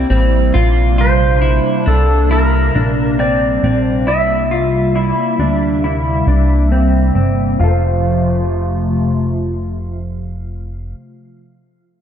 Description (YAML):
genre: dream pop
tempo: 68 BPM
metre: 4/4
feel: straight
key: F major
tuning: A4 = 439 Hz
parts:
  - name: clean lap steel guitar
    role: melody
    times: 0.0-11.0 s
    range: A4 to F5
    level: -19 LUFS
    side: right 1 dB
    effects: low-pass filter, ping-pong delay
  - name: hollow soft pad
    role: sustained chords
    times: 0.0-10.9 s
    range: C3 to E5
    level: -19 LUFS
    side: equal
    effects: ensemble chorus, low-pass filter
  - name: clean electric guitar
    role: arpeggios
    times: 0.0-11.1 s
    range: C4 to F5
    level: -19 LUFS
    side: left 1 dB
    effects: lush chorus, low-pass filter, ping-pong delay
  - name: plucky analog bass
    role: bass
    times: 0.0-10.9 s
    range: F1 to D2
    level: -16 LUFS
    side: equal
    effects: none
room: light reverb, digital ambience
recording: dark, warm production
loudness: -12 LUFS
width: side -9 dB against mid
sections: 0.0-7.6 A section; 7.6-11.1 B section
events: filter sweep 0.0-7.6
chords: 0.0 C7; 0.5 Bb69; 4.1 C7; 7.6 F